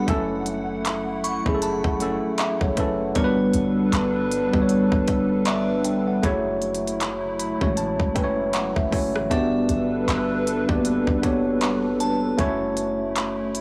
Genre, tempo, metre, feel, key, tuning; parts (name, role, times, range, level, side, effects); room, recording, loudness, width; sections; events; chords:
contemporary R&B; 78 BPM; 4/4; swing 58% on 16ths; F# phrygian; A4 = 440 Hz
mellow tine electric piano; accompaniment; 0.0-13.6 s; C#3 to B5; -25 LUFS; equal
hollow soft pad; sustained chords; 0.0-13.6 s; F#3 to F#5; -31 LUFS; equal; chorus, sidechain pumping
warm 808-style bass; bass; 0.0-13.6 s; F#1 to A1; -35 LUFS; equal
glassy synth bell; texture; 0.0-12.7 s; C#5 to C#6; -36 LUFS; equal; chorus, digital delay
trap drum kit; drums; 0.1-13.6 s; handclaps, hi-hat, kick drum, rim click; -29 LUFS; equal; overdrive
light reverb; blown-out, overdriven recording, overdrive; -23 LUFS; mono
0.0-13.6 A section
tine electric piano fill 0.8-3.2, 7.0-9.3
0.1 F#m7; 3.2 Gmaj7; 6.2 F#m7; 9.3 Gmaj7; 12.4 F#m7